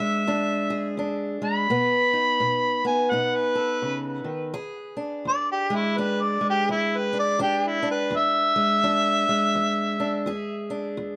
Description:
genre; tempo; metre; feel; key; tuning
acoustic country blues, solo or duo; 84 BPM; 4/4; swing 60% on 8ths; E mixolydian; A4 = 438 Hz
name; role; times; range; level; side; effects
mellow harmonica; melody; 0.0-10.3 s; E4 to B5; -26 LUFS; equal; analog delay
fingerpicked acoustic archtop guitar; accompaniment; 0.0-11.2 s; E2 to A4; -29 LUFS; equal; none
room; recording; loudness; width
wet studio reverb, RT60 0.5 s; none; -24 LUFS; mono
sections
0.0-4.5 A section; 4.5-11.2 B section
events
harmonica solo 4.5-11.2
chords
0.0 E7; 1.7 B7; 4.5 E7

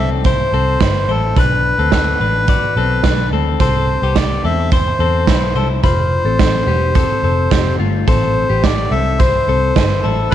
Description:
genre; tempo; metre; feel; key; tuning
jangly indie pop; 107 BPM; 4/4; straight; A minor; A4 = 439 Hz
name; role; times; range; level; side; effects
melodica; melody; 0.0-10.3 s; A4 to E5; -18 LUFS; equal; none
direct-recorded clean electric guitar; arpeggios; 0.0-10.3 s; A3 to B5; -21 LUFS; left 14 dB; spring reverb, tape echo
vintage muted picked electric bass; bass; 0.0-10.3 s; E1 to E2; -18 LUFS; equal; none
raw garage drum kit; drums; 0.2-10.3 s; hi-hat, kick drum, snare drum; -17 LUFS; right 3 dB; none
room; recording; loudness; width
little or no reverb; 1960s-style stereo; -12 LUFS; side -11 dB against mid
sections
0.0-10.3 A section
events
none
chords
0.0 Am; 1.4 Bm7; 3.6 C6; 5.8 Fadd9; 8.1 Am

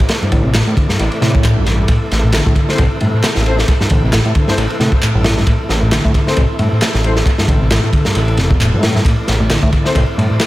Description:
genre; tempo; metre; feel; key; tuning
breakbeat, breaks; 134 BPM; 4/4; swing 56% on 16ths; A minor; A4 = 440 Hz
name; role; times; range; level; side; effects
tonewheel organ; sustained chords; 0.0-10.5 s; C3 to D5; -23 LUFS; equal; chorus vibrato, fast rotary speaker, sidechain pumping
fat analog bass; bass; 0.0-10.3 s; E1 to A2; -16 LUFS; equal; none
crunchy breakbeat drum kit; drums; 0.0-10.5 s; kick drum, ride cymbal, snare drum; -15 LUFS; equal; dub echo
vintage muted picked electric bass; riff; 0.2-10.4 s; G2 to D3; -18 LUFS; equal; none
electronic handclaps; drums; 0.5-10.5 s; none; -26 LUFS; equal; none
swell; sound effects; 1.2-1.9 s; none; -28 LUFS; left 1 dB; none
clear horn section; stabs; 2.7-7.1, 9.9-10.0 s; C4 to C5; -24 LUFS; left 3 dB; dub echo
room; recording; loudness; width
light reverb, studio reverb; echo-heavy mix; -11 LUFS; side -17 dB against mid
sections
0.0-10.5 A section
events
swell 1.2-1.9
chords
0.0 Am

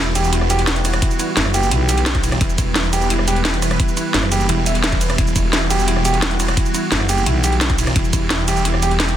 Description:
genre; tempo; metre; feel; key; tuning
dark technical drum and bass; 173 BPM; 4/4; straight; E minor; A4 = 440 Hz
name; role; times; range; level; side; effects
sweeping resonant pad; sustained chords; 0.0-9.2 s; E3 to B4; -25 LUFS; right 1 dB; chorus, sidechain pumping
felt-muted upright piano; arpeggios; 0.0-9.1 s; E4 to E5; -23 LUFS; right 3 dB; sidechain pumping, dub echo
snarling distorted saw bass; bass; 0.0-9.2 s; E1; -20 LUFS; equal; sidechain pumping
drum and bass drum kit; drums; 0.2-9.2 s; hi-hat, ride cymbal, rim click, shaker, snare drum; -20 LUFS; equal; none
electronic kick drum; drums; 1.0-8.2 s; none; -19 LUFS; equal; overdrive
growling FM bass; bass; 1.4-4.5, 6.9-7.9 s; F#1 to B1; -18 LUFS; equal; tube saturation
room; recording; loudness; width
light reverb; dense, heavily limited modern master; -15 LUFS; side -11 dB against mid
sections
0.0-9.2 A section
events
none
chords
0.0 Emadd9

